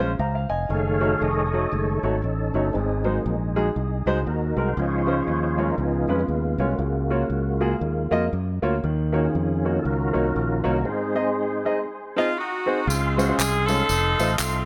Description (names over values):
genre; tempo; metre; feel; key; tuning
uptempo gospel; 118 BPM; 4/4; swing 59% on 8ths; Db major; A4 = 436 Hz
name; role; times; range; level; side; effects
warm upright piano; accompaniment; 0.0-14.3 s; Ab2 to Bb5; -28 LUFS; equal; none
fingered electric bass; bass; 0.0-14.6 s; F1 to Gb2; -28 LUFS; equal; none
tonewheel organ; sustained chords; 0.7-14.7 s; Eb3 to C6; -29 LUFS; equal; slow rotary speaker, overdrive, chorus vibrato
bright saxophone section; melody; 12.2-14.7 s; Ab3 to A4; -26 LUFS; equal; none
tambourine and handclaps; percussion; 12.9-14.5 s; none; -31 LUFS; equal; none
room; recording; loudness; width
moderate scoring stage reverb, RT60 1.6 s, small room ambience; none; -23 LUFS; mono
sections
0.0-12.9 A section; 12.9-14.7 B section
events
upright piano fill 0.0-0.7; tonewheel organ solo 0.0-12.9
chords
0.0 Bbm7; 0.7 Gbm6; 2.7 Ab7; 4.8 Dbmaj7; 5.8 Db7; 6.8 Gbmaj7/Db; 8.8 Ebm7; 10.9 Ab; 12.9 Dbmaj7; 13.9 F7